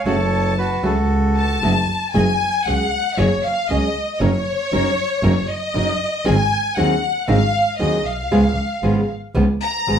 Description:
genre	tango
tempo	116 BPM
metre	4/4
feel	rubato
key	F# major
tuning	A4 = 441 Hz
part	bandoneon	melody	0.0-1.6 s	F#4 to C#5	-22 LUFS	right 1 dB	none
part	rich studio violin section	second line	0.1-10.0 s	C#5 to A#5	-21 LUFS	left 2 dB	none
part	nylon-string guitar	accompaniment	0.1-10.0 s	C#3 to A#4	-20 LUFS	right 1 dB	none
part	dark double bass	bass	0.1-10.0 s	F#1 to D#2	-20 LUFS	right 1 dB	none
room	wet studio reverb, RT60 0.5 s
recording	heard from further back in the room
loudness	-16 LUFS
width	side -8 dB against mid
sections	0.0-2.1 A section; 2.1-10.0 B section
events	violin section solo 2.1-10.0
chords	0.1 F#m; 2.1 F#add9; 4.2 D#m7/F#; 6.3 G#7; 8.3 C#7

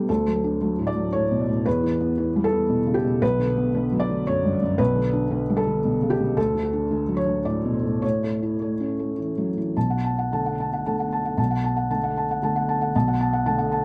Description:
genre	neoclassical minimalist piano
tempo	114 BPM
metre	3/4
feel	rubato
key	B minor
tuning	A4 = 439 Hz
part	felt-muted upright piano	solo	0.0-13.8 s	B1 to A5	-23 LUFS	equal	tape echo
room	light reverb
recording	close, detailed microphones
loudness	-23 LUFS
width	mono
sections	0.0-9.8 A section; 9.8-13.8 B section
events	none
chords	0.1 D; 1.7 Em; 3.2 Bm; 4.8 G/B; 6.4 D; 8.0 A; 9.8 Bm7

